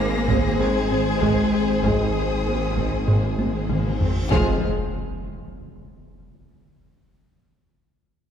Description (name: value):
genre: cinematic, hybrid orchestral and electronic film score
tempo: 97 BPM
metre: 4/4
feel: straight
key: F minor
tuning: A4 = 445 Hz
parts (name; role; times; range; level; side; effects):
- warm symphonic violin section; melody; 0.0-4.7 s; Eb6 to Bb6; -36 LUFS; left 3 dB; none
- warm symphonic violin section; second line; 0.0-4.7 s; Ab4 to C5; -28 LUFS; left 4 dB; none
- warm symphonic viola section; accompaniment; 0.0-4.7 s; Ab3 to F4; -30 LUFS; right 1 dB; none
- hollow soft pad; sustained chords; 0.0-4.7 s; Ab3 to C5; -29 LUFS; left 1 dB; chorus
- thumb-piano-like synth pluck; arpeggios; 0.0-3.9 s; Ab3 to Ab4; -33 LUFS; right 2 dB; none
- clear symphonic double bass section; bass; 0.0-4.7 s; F1 to Ab1; -29 LUFS; right 4 dB; none
- rich symphonic cello section; bass; 0.0-4.7 s; Eb3 to Bb3; -30 LUFS; right 3 dB; none
- swelling detuned saw bass; bass; 0.0-4.7 s; F1 to Ab1; -28 LUFS; equal; none
- taiko ensemble; drums; 0.3-5.5 s; none; -26 LUFS; equal; none
- clear trombone section; sustained chords; 0.6-4.6 s; Eb3 to Ab3; -37 LUFS; right 2 dB; none
- mellow French horn section; sustained chords; 0.6-4.6 s; C4 to Ab4; -33 LUFS; left 3 dB; none
- reverse cymbal and impact; sound effects; 4.1-6.8 s; none; -29 LUFS; equal; none
room: wet concert hall reverb, RT60 2.2 s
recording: dark, warm production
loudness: -19 LUFS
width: side -8 dB against mid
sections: 0.0-4.3 A section; 4.3-6.8 B section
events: drum fill 3.4-4.3; reverse cymbal 4.1; impact 4.3-6.8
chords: 0.0 Ab; 4.3 Fm